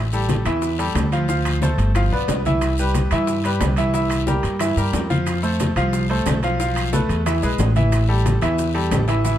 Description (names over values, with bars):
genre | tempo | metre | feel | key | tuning
latin, salsa | 181 BPM | 4/4 | straight | A minor | A4 = 439 Hz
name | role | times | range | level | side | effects
upright bass | bass | 0.0-9.4 s | G1 to G2 | -21 LUFS | equal | none
bright grand piano | accompaniment | 0.1-9.4 s | E3 to F5 | -22 LUFS | equal | none
congas | percussion | 0.1-9.4 s | none | -27 LUFS | left 1 dB | none
maracas | percussion | 0.1-9.4 s | none | -38 LUFS | right 7 dB | none
bongos | percussion | 0.3-9.4 s | none | -31 LUFS | left 5 dB | none
guiro | percussion | 0.3-9.4 s | none | -36 LUFS | left 7 dB | none
timbales | percussion | 0.3-9.3 s | none | -31 LUFS | right 4 dB | none
claves | percussion | 0.5-9.1 s | none | -37 LUFS | left 4 dB | none
room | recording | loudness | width
light reverb | dark, warm production | -17 LUFS | side -11 dB against mid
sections
0.0-9.4 A section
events
none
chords
0.0 A5; 1.3 Dm7; 2.0 G7; 2.6 Cmaj7; 3.9 C7; 5.3 F; 6.6 Fmaj7#11/B; 7.3 E; 7.9 A5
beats
0.30 0.63 0.96 | 1.29 1.62 1.96 2.29 | 2.62 2.95 3.28 3.61 | 3.94 4.27 4.61 4.94 | 5.27 5.60 5.93 6.26 | 6.60 6.93 7.26 7.59 | 7.92 8.26 8.59 8.92 | 9.25